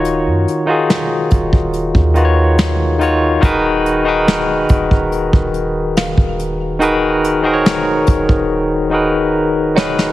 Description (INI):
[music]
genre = contemporary R&B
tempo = 71 BPM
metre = 4/4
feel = straight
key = G# dorian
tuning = A4 = 440 Hz
[part]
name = barky tine electric piano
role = accompaniment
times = 0.0-10.1 s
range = D#3 to C#5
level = -14 LUFS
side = left 1 dB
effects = medium stereo tremolo
[part]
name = warm 808-style bass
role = bass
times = 0.0-10.1 s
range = D#1 to F#2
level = -20 LUFS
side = equal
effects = none
[part]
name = soft brush drum kit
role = drums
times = 0.0-10.1 s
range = hi-hat, kick drum, snare drum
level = -16 LUFS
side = equal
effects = none
[part]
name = mallet-like synth pluck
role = texture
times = 6.0-10.1 s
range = C#5 to E#5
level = -25 LUFS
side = right 5 dB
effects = chorus, tape echo
[sound]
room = light reverb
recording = heavily compressed radio sound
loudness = -12 LUFS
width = side -15 dB against mid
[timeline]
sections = 0.0-10.1 A section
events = drum fill 8.5-10.1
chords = 0.0 C#9sus4; 3.4 G#m9/D#